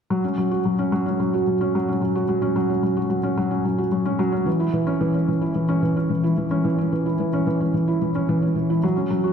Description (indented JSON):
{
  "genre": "electronica",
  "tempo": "110 BPM",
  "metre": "4/4",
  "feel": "straight",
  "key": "unclear",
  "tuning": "A4 = 440 Hz",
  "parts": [
    { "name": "felt-muted upright piano", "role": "riff", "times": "0.1-9.3 s", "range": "E3 to F#4", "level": "-19 LUFS", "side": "equal", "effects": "ping-pong delay" }
  ],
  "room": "wet scoring stage reverb, RT60 1.5 s",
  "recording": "dark, warm production",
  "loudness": "-19 LUFS",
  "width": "side -7 dB against mid",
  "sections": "0.1-9.3 A section",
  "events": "none",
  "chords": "none",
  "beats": "| 0.11 0.65 1.20 1.74 | 2.29 2.83 3.38 3.92 | 4.47 5.01 5.56 6.11 | 6.65 7.20 7.74 8.29 | 8.83"
}